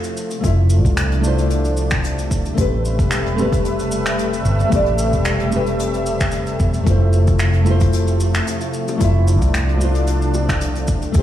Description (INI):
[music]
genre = sunset chillout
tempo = 112 BPM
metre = 4/4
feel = swing 54% on 16ths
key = F lydian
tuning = A4 = 445 Hz
[part]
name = nylon-string guitar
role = accompaniment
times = 0.0-11.2 s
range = A3 to E5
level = -23 LUFS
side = left 1 dB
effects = auto-pan, tape echo
[part]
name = lush unison pad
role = sustained chords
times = 0.0-11.2 s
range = C3 to E5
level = -23 LUFS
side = equal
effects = chorus
[part]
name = jazz brush drum kit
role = drums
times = 0.0-11.2 s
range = cabasa, finger snaps, hi-hat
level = -27 LUFS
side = equal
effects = none
[part]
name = hollow-body short-scale fingered electric bass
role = bass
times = 0.4-11.2 s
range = E1 to Eb2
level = -18 LUFS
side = equal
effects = none
[part]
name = electronic kick drum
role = drums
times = 0.4-11.2 s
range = none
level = -20 LUFS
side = equal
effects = overdrive
[part]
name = bongos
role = percussion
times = 8.9-10.5 s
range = none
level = -30 LUFS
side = left 3 dB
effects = none
[sound]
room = light reverb, small room ambience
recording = played on a big sound system in a bare room, stone room reverb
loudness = -15 LUFS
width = side -12 dB against mid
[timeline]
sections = 0.0-11.2 A section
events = none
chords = 0.0 Fmaj7; 2.6 Am9; 6.9 Fmaj7